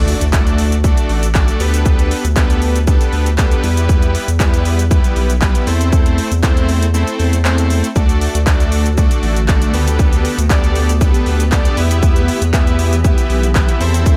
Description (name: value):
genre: dance-pop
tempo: 118 BPM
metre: 4/4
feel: straight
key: G major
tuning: A4 = 440 Hz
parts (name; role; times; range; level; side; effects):
- big bright polysynth; accompaniment; 0.0-14.2 s; G3 to E5; -22 LUFS; equal; sidechain pumping
- saturated sub bass; bass; 0.0-14.2 s; A1 to E2; -18 LUFS; equal; sidechain pumping
- impact; sound effects; 0.0-1.9 s; none; -30 LUFS; equal; none
- house drum kit; drums; 0.1-14.2 s; handclaps, hi-hat, kick drum, shaker; -17 LUFS; equal; overdrive
- granular cloud pad; sustained chords; 8.9-14.2 s; D3 to G4; -28 LUFS; equal; none
room: little or no reverb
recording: none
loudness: -14 LUFS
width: mono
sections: 0.0-14.2 A section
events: impact 0.0-1.9; kick muted 6.9-8.0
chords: 0.0 D; 1.6 Gadd9/D; 3.6 Em; 5.7 Am/E; 8.0 D; 9.7 Gadd9/D; 11.8 Em